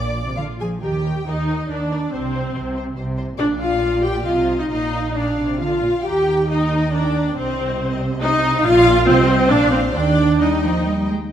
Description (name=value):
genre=quick classical-period movement for string orchestra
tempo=128-144 BPM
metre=3/4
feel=rubato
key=Eb major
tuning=A4 = 440 Hz
part: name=clear studio violin section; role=melody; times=0.0-11.1 s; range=Bb4 to D6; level=-34 LUFS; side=left 4 dB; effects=none
part: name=clear studio violin section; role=second line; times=0.0-11.1 s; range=C5 to Ab5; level=-27 LUFS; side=left 3 dB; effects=none
part: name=clear studio viola section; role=accompaniment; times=0.0-11.1 s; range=C4 to D5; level=-18 LUFS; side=equal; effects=none
part: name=warm studio cello section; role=bass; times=0.0-11.2 s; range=Bb2 to Ab3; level=-24 LUFS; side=right 2 dB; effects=none
part: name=warm studio double bass section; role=bass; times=0.0-11.1 s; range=Bb1 to Eb2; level=-25 LUFS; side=right 2 dB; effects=none
room=wet scoring stage reverb, RT60 1.5 s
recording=none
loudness=-16 LUFS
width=side -10 dB against mid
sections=0.8-11.3 A section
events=none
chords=0.0 Bb; 0.8 Eb; 2.1 N.C.; 3.4 Bb; 4.3 Cm; 4.7 Bb; 6.1 Eb; 7.4 Cm; 8.6 Bb; 9.1 Cm; 9.5 Bb; 9.9 Eb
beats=0.37 | 0.83 1.27 1.70 | 2.13 2.55 2.97 | 3.39 3.82 4.26 | 4.71 5.16 5.61 | 6.05 6.50 6.93 | 7.36 7.80 8.22 | 8.65 9.07 9.50 | 9.95 10.41 10.87